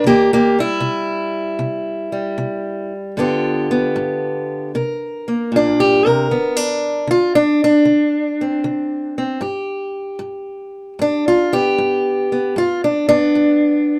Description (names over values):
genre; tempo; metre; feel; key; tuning
acoustic country blues, solo or duo; 77 BPM; 4/4; swing 68% on 8ths; unclear; A4 = 441 Hz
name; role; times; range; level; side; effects
fingerpicked steel-string acoustic guitar; solo; 0.0-14.0 s; G2 to Bb4; -18 LUFS; equal; none
room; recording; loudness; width
moderate small room reverb, RT60 0.5 s; dark, warm production; -18 LUFS; mono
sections
0.0-9.4 A section; 9.4-14.0 A section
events
steel-string acoustic guitar solo 0.0-14.0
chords
0.0 C7; 3.2 G7; 4.7 Bb69; 6.3 D7(no3); 9.4 G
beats
| 0.03 0.81 1.59 2.38 | 3.16 3.94 4.72 5.51 | 6.29 7.07 7.85 8.64 | 9.42 10.20 10.99 11.77 | 12.55 13.34